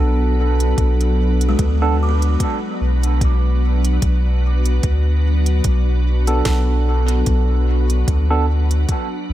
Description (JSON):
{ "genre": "ambient dub", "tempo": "74 BPM", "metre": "4/4", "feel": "swing 56% on 16ths", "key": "B minor", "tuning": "A4 = 442 Hz", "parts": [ { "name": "soft additive organ-like pad", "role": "sustained chords", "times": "0.0-9.3 s", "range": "F#3 to B4", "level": "-25 LUFS", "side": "left 1 dB", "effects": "ensemble chorus, built-in reverb, vintage 12-bit sampler grit" }, { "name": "tine electric piano", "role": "stabs", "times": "0.0-8.4 s", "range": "B3 to A4", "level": "-24 LUFS", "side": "right 3 dB", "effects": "medium stereo tremolo, dub echo" }, { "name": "warm sub bass", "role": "bass", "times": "0.0-9.3 s", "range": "B1 to D2", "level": "-16 LUFS", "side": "equal", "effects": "none" }, { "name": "organic electronic drum kit", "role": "drums", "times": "0.6-9.1 s", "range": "hi-hat, snare drum", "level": "-29 LUFS", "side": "right 2 dB", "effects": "dub echo" }, { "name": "electronic kick drum", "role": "drums", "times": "0.8-9.1 s", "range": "none", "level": "-20 LUFS", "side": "equal", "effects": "none" }, { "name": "buzzing kalimba", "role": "arpeggios", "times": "1.5-4.8 s", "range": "G#3 to D6", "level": "-29 LUFS", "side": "left 1 dB", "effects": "dub echo" } ], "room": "digital ambience", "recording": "none", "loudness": "-15 LUFS", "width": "side -14 dB against mid", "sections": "0.0-9.3 A section", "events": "none", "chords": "0.0 Bm7", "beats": "| 0.78 1.59 2.40 3.21 | 4.03 4.83 5.65 6.46 | 7.27 8.08 8.89" }